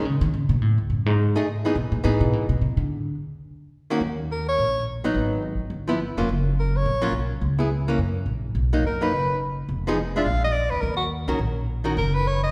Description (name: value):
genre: jazz, small-group swing and bop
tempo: 211 BPM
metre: 4/4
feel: swing 60% on 8ths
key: Eb minor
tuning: A4 = 438 Hz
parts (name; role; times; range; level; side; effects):
- archtop guitar, miked and amplified; accompaniment; 0.0-12.0 s; Eb3 to Bb4; -29 LUFS; equal; none
- upright bass; bass; 0.0-12.5 s; F1 to D#3; -26 LUFS; equal; none
- breathy soprano saxophone; melody; 4.3-12.5 s; Gb4 to F5; -28 LUFS; equal; none
room: wet recital hall reverb, RT60 1.7 s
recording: recorded in a church or concert hall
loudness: -24 LUFS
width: mono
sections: 0.0-4.0 A section; 4.0-12.5 B section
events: upright bass solo 0.0-4.0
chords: 0.0 Badd9; 0.6 B13 (rootless); 1.7 Emaj7; 2.9 Bb; 4.0 Eb7(no3); 5.2 Abm7; 5.7 G6; 6.3 Gb; 7.4 Dbm7; 8.0 Gb; 8.6 Bmaj7; 9.7 Fm7b5; 10.3 Bb; 10.8 Ebm7